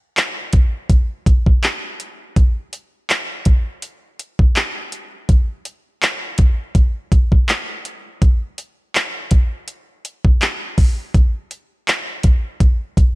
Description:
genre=R&B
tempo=82 BPM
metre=4/4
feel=swing 54% on 16ths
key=none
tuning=none
part: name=smooth R&B drum kit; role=drums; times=0.2-13.2 s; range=handclaps, hi-hat, kick drum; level=-14 LUFS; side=equal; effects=none
room=digital ambience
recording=dark, warm production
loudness=-15 LUFS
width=side -22 dB against mid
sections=0.0-13.2 A section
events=none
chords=none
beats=0.17 0.90 1.63 | 2.36 3.10 3.83 4.56 | 5.29 6.02 6.75 7.49 | 8.22 8.95 9.68 10.41 | 11.14 11.88 12.61

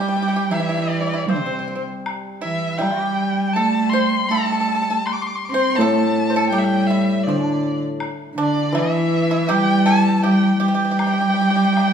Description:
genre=chinese traditional, Chinese chamber ensemble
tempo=80 BPM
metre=4/4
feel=straight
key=G zhi mode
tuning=A4 = 441 Hz
part: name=rich erhu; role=melody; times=0.0-11.9 s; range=C5 to D6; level=-23 LUFS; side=left 2 dB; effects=none
part: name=pipa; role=second line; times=0.0-11.9 s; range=C4 to C5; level=-25 LUFS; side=right 3 dB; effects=none
part: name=warm cello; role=second line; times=0.0-11.9 s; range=C3 to C4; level=-20 LUFS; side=right 2 dB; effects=none
part: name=hammered dulcimer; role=accompaniment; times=0.0-11.0 s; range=A2 to G3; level=-26 LUFS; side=left 4 dB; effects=none
part: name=woodblock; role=percussion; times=0.5-11.9 s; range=none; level=-33 LUFS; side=left 4 dB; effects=none
room=wet recital hall reverb, RT60 1.6 s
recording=studio ambience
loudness=-17 LUFS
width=side -8 dB against mid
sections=0.0-11.9 A section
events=none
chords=none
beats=0.53 1.29 | 2.05 2.81 3.56 4.30 | 5.05 5.79 6.53 7.27 | 8.01 8.75 9.49 10.24 | 10.99 11.74

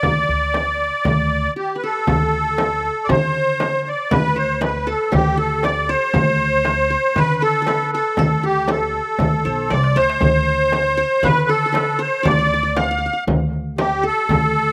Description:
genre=Arabic maqam ensemble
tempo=118 BPM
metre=4/4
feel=straight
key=D maqam rast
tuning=A4 = 436 Hz
part: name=musette accordion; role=melody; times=0.0-14.7 s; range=G4 to F#5-50c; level=-21 LUFS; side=equal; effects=slapback echo
part: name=qanun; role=second line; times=0.0-14.7 s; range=G4 to F#5-50c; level=-30 LUFS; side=equal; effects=slapback echo
part: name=upright bass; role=bass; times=0.0-14.7 s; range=B1 to D3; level=-26 LUFS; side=equal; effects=none
part: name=darbuka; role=percussion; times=0.0-14.4 s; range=none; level=-26 LUFS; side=equal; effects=none
part: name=frame drum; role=percussion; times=0.0-14.4 s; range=none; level=-26 LUFS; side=equal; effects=none
room=little or no reverb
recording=recorded outdoors, with no room sound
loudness=-18 LUFS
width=mono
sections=0.0-2.1 A section; 2.1-14.7 B section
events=stop 1.6-2.1; drum fill 9.7-10.2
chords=none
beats=| 0.03 0.55 1.05 1.56 | 2.08 2.58 3.09 3.60 | 4.11 4.62 5.13 5.64 | 6.15 6.66 7.16 7.67 | 8.18 8.69 9.20 9.71 | 10.22 10.72 11.23 11.74 | 12.25 12.76 13.27 13.78 | 14.29

